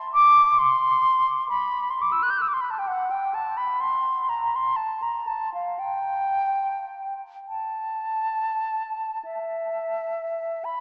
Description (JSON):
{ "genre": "classical, free, expressive piece for unaccompanied flute", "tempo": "23-45 BPM (dotted quarters)", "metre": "6/8", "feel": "rubato", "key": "A dorian", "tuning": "A4 = 440 Hz", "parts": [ { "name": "concert flute", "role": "solo", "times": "0.1-10.8 s", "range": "E5 to G6", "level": "-24 LUFS", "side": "equal", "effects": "none" } ], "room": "wet cathedral reverb, RT60 5.2 s", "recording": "in a vast, echoing space, small speaker sound", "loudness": "-24 LUFS", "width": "mono", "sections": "0.0-10.8 A section", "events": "none", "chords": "none" }